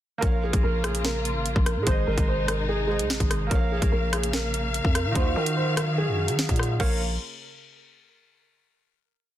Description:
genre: hip hop, drill.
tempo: 146 BPM.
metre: 4/4.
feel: half-time.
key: Bb minor.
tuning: A4 = 435 Hz.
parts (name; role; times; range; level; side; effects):
dark concert grand piano; melody; 0.2-7.0 s; Ab4 to C5; -30 LUFS; right 1 dB; digital delay.
felt-muted upright piano; accompaniment; 0.2-7.0 s; Eb3 to F5; -33 LUFS; right 5 dB; none.
dark symphonic string section; sustained chords; 0.2-7.0 s; C3 to F5; -32 LUFS; left 2 dB; none.
growling 808-style bass; bass; 0.2-7.2 s; Ab1 to Eb3; -27 LUFS; equal; none.
drill drum kit; drums; 0.2-6.9 s; crash cymbal, hi-hat, kick drum, rim click, snare drum; -26 LUFS; equal; soft clipping on snare.
room: light reverb.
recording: dense, heavily limited modern master.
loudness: -22 LUFS.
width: side -12 dB against mid.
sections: 0.2-6.8 hook; 6.8-8.4 final chord.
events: none.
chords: 0.2 Bbm; 1.9 Ab; 3.5 Bbm; 5.2 Ebmadd9; 6.8 Bbm.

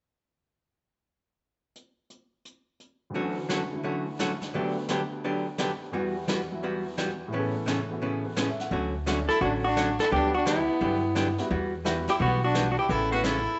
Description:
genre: country, western swing.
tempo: 172 BPM.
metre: 4/4.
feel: swing 64% on 8ths.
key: D major.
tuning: A4 = 440 Hz.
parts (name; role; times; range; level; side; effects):
vintage brush drum kit; drums; 1.8-13.6 s; brushed snare drum, hi-hat, snare drum; -38 LUFS; equal; none.
archtop guitar, miked and amplified; accompaniment; 3.1-13.4 s; A2 to G4; -32 LUFS; equal; none.
warm upright piano; accompaniment; 3.1-13.2 s; D2 to F#5; -37 LUFS; equal; none.
upright bass; bass; 8.7-13.5 s; A1 to G2; -33 LUFS; equal; none.
vintage hollow-body jazz guitar; melody; 9.3-13.6 s; E4 to B4; -29 LUFS; equal; none.
clear fiddle; second line; 9.3-13.6 s; B3 to F#4; -32 LUFS; equal; none.
room: moderate echo chamber reverb, RT60 1.6 s.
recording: nothing above 8.0 kHz.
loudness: -28 LUFS.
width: mono.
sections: 1.8-3.1 A section; 3.1-8.7 B section; 8.7-13.6 C section.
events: none.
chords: 1.8 N.C.; 3.1 Dmaj7; 4.5 Gmaj7/D; 5.9 Emadd9; 7.3 Aadd9; 8.7 Dmaj7; 10.1 Gmaj7/D; 11.5 Emadd9; 12.9 Aadd9.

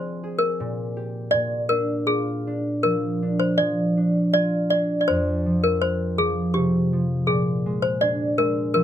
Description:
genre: children's music, lullaby.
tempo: 81 BPM.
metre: 3/4.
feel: rubato.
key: unclear.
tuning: A4 = 440 Hz.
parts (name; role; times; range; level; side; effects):
toy piano; melody; 0.0-8.8 s; G4 to D5; -23 LUFS; left 1 dB; none.
concert harp; accompaniment; 0.0-8.8 s; F2 to Ab4; -23 LUFS; equal; none.
room: light reverb.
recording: close, detailed microphones.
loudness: -20 LUFS.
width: side -10 dB against mid.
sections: 0.0-8.8 A section.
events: none.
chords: 0.0 Fm; 0.6 Gm/Bb; 1.3 Bb; 5.1 Fsus2; 7.3 Bb7.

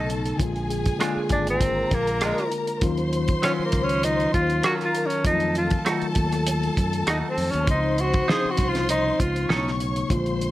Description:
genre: lush 1970s-style soul.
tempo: 99 BPM.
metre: 4/4.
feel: swing 54% on 16ths.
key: unclear.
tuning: A4 = 440 Hz.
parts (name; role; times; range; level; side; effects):
breathy tenor saxophone; melody; 0.0-9.5 s; Ab3 to Ab4; -24 LUFS; equal; none.
warm studio string section; second line; 0.0-10.5 s; Ab4 to Db6; -29 LUFS; left 2 dB; none.
mellow tine electric piano; accompaniment; 0.0-10.5 s; Db3 to F4; -28 LUFS; left 2 dB; medium stereo tremolo.
fingered electric bass; bass; 0.0-10.5 s; Ab1 to Gb2; -28 LUFS; equal; none.
cloth-damped thuddy drum kit; drums; 0.1-10.5 s; hi-hat, kick drum, rim click, snare drum; -25 LUFS; equal; none.
vibraphone with soft mallets; texture; 0.7-9.2 s; Eb4 to Ab4; -39 LUFS; right 1 dB; none.
semi-hollow electric guitar; riff; 1.0-9.7 s; Gb3 to C5; -31 LUFS; right 5 dB; none.
room: light reverb, small room ambience.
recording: none.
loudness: -21 LUFS.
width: side -15 dB against mid.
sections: 0.0-10.5 A section.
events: tenor saxophone solo 0.0-10.5.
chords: 0.4 Bb7; 2.8 Ebm9; 5.2 F7b9; 7.7 Dbmaj9; 9.5 Cb9.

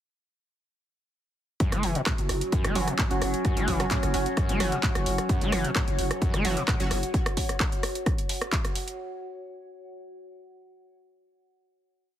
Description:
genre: driving peak-time techno.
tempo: 130 BPM.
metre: 4/4.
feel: straight.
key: F# minor.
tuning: A4 = 440 Hz.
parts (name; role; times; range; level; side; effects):
screaming distorted acid line; riff; 1.6-6.7 s; F#2 to A3; -31 LUFS; equal; distortion, analog chorus, cassette tape, sidechain pumping, ping-pong delay.
overtone-sweeping drone; drone; 2.3-7.2 s; F#3 to C#4; -36 LUFS; right 1 dB; chorus, built-in reverb, sidechain pumping.
electronic kick drum; drums; 1.6-8.6 s; none; -28 LUFS; equal; none.
techno drum kit; drums; 1.6-9.0 s; handclaps, hi-hat, rim click; -31 LUFS; right 1 dB; sidechain pumping on hats.
warbly tape-like pad; texture; 1.6-9.0 s; F#4 to F#5; -35 LUFS; equal; chorus, built-in reverb, sidechain pumping.
growling 808-style bass; bass; 1.7-7.0 s; F#1; -33 LUFS; equal; overdrive, sidechain pumping, low-pass filter.
wavetable chord stab; stabs; 2.8-7.0 s; F#3 to F#4; -32 LUFS; right 3 dB; sidechain pumping, ping-pong delay.
room: light reverb.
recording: heavily compressed radio sound, multiband compression.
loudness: -24 LUFS.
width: side -11 dB against mid.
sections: 1.6-9.0 drop.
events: drop 1.6-9.0.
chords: 1.6 F#5.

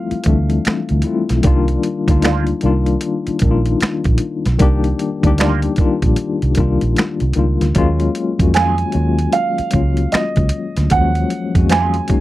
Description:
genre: R&B, neo-soul.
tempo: 76 BPM.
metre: 4/4.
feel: swing 62% on 16ths.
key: unclear.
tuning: A4 = 438 Hz.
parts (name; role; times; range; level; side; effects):
dark grand piano; melody; 0.0-1.0, 8.5-12.2 s; Eb5 to Ab5; -21 LUFS; right 5 dB; none.
tine electric piano; accompaniment; 0.0-12.2 s; Eb3 to G4; -18 LUFS; left 4 dB; medium tremolo.
vintage muted fingered electric bass; bass; 0.1-12.1 s; Bb1 to F2; -17 LUFS; right 1 dB; none.
boom bap sampler-style drum kit; drums; 0.1-12.2 s; finger snaps, hi-hat, kick drum, snare drum; -17 LUFS; right 1 dB; none.
electric guitar through a small old amp; second line; 2.2-12.0 s; Eb3 to Ab4; -23 LUFS; right 8 dB; wah.
room: little or no reverb.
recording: dry, close 1970s-style studio recording.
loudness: -14 LUFS.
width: side -16 dB against mid.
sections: 0.0-12.2 A section.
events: none.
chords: 0.0 Dm11; 1.4 Cm11; 7.8 Ebm11.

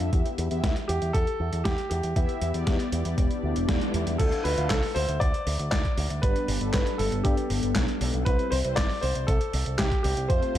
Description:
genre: italo disco.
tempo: 118 BPM.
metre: 4/4.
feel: straight.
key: D dorian.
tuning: A4 = 441 Hz.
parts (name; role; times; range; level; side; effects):
mellow synth brass; stabs; 0.0-10.6 s; G3 to F5; -31 LUFS; left 2 dB; chorus, phaser, cassette tape, digital delay.
picked electric bass with an envelope filter; bass; 0.0-10.6 s; E1 to G2; -29 LUFS; equal; tube saturation.
dusty soul sampler-style drum kit; drums; 0.0-10.6 s; crash cymbal, handclaps, hi-hat, snare drum; -33 LUFS; equal; overdrive, studio reverb.
electronic kick drum; drums; 0.1-10.4 s; none; -26 LUFS; equal; studio reverb.
warm grand piano; melody; 0.9-10.6 s; G4 to D5; -30 LUFS; equal; digital delay.
swell; sound effects; 3.4-4.2 s; none; -36 LUFS; left 6 dB; none.
room: light reverb, digital ambience.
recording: dark, warm production.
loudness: -24 LUFS.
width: side -12 dB against mid.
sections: 0.0-4.2 A section; 4.2-10.6 B section.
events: swell 3.4-4.2; band accent 3.7.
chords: 0.1 Em; 4.2 Dm; 6.2 G; 8.3 C.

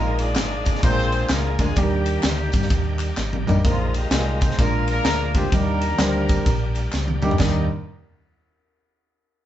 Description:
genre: uptempo gospel.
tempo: 128 BPM.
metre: 4/4.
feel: swing 63% on 8ths.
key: Eb major.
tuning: A4 = 440 Hz.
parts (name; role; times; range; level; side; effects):
warm horn section; melody; 0.0-7.7 s; F3 to Eb5; -27 LUFS; left 1 dB; none.
warm concert grand piano; accompaniment; 0.0-7.7 s; Eb2 to C5; -25 LUFS; equal; none.
bright tonewheel organ; sustained chords; 0.0-7.7 s; Eb3 to Bb4; -33 LUFS; equal; slow rotary speaker, chorus vibrato.
hollow-body short-scale fingered electric bass; bass; 0.0-7.7 s; Ab1 to G2; -24 LUFS; equal; none.
crisp fusion drum kit; drums; 0.2-7.5 s; china cymbal, kick drum, ride cymbal, snare drum, toms; -23 LUFS; equal; none.
tambourine and handclaps; percussion; 0.2-7.7 s; none; -36 LUFS; left 1 dB; none.
room: moderate studio reverb, RT60 0.8 s.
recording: band playing live in one room, nothing above 7.9 kHz.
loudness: -18 LUFS.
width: side -12 dB against mid.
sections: 0.0-3.6 A section; 3.6-7.4 B section; 7.4-9.3 C section.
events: drum fill 3.2-3.6, 6.9-7.4.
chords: 0.0 Bb7sus4; 0.8 Bb7; 1.8 Ebmaj7; 3.6 Bb7sus4; 4.6 Bb7; 5.5 Ebmaj7.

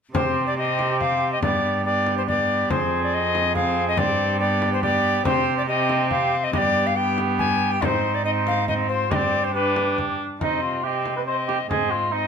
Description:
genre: classical, renaissance-style consort dance.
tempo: 140 BPM.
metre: 3/4.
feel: straight.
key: C harmonic minor.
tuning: A4 = 440 Hz.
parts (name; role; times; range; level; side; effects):
bright alto recorder; melody; 0.1-12.3 s; B4 to Ab5; -24 LUFS; left 4 dB; none.
mellow cor anglais; second line; 0.1-12.3 s; Eb4 to C5; -25 LUFS; right 6 dB; none.
rich viola; accompaniment; 0.1-12.3 s; B3 to D4; -28 LUFS; left 2 dB; none.
warm cello; bass; 0.1-12.3 s; F2 to C3; -28 LUFS; right 1 dB; none.
frame drum; percussion; 0.1-11.9 s; none; -29 LUFS; left 2 dB; none.
room: moderate stone room reverb, RT60 1.0 s.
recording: none.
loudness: -20 LUFS.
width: side -6 dB against mid.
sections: 0.1-10.4 A section; 10.4-12.3 B section.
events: none.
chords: 0.1 Cm; 1.4 G; 2.7 Fm; 4.0 Gsus4; 4.4 G; 5.3 Cm; 6.5 G; 7.8 Ab; 9.1 Gsus4; 9.5 G; 10.4 Cm; 11.7 Ab.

